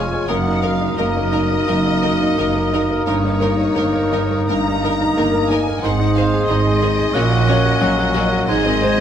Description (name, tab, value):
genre	classical, romantic movement for piano and orchestra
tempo	88 BPM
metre	4/4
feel	uneven beats, rubato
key	unclear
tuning	A4 = 440 Hz
part	clear baby grand piano	melody	0.0-9.0 s	F2 to Db5	-20 LUFS	left 2 dB	none
part	warm studio violin section	melody	0.0-9.0 s	Db5 to Bb5	-25 LUFS	left 4 dB	none
part	hollow concert flute	second line	0.0-9.0 s	Eb6 to Ab6	-28 LUFS	left 1 dB	none
part	mellow clarinet	second line	0.0-9.0 s	Db4 to Gb4	-28 LUFS	left 2 dB	none
part	rich studio violin section	second line	0.0-9.0 s	Gb4 to Eb5	-30 LUFS	left 2 dB	none
part	warm cor anglais	second line	0.0-9.0 s	Bb4 to Db5	-28 LUFS	right 2 dB	none
part	mellow bassoon	accompaniment	0.0-9.0 s	Ab3 to Bb3	-26 LUFS	right 2 dB	none
part	rich studio viola section	accompaniment	0.0-9.0 s	Eb3 to Eb4	-28 LUFS	right 2 dB	none
part	mellow French horn section	sustained chords	0.0-9.0 s	Ab3 to Ab4	-25 LUFS	left 2 dB	none
part	rich studio cello section	bass	0.0-9.0 s	F2 to Bb2	-25 LUFS	right 3 dB	none
part	rich studio double bass section	bass	0.0-9.0 s	F1 to Bb1	-23 LUFS	right 4 dB	none
room	moderate recital hall reverb, RT60 1.6 s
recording	none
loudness	-15 LUFS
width	side -9 dB against mid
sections	0.0-9.0 A section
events	none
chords	0.3 Ebm/Gb; 3.1 Eb7/G; 5.8 Ab; 7.1 Gb/Bb; 8.5 Ab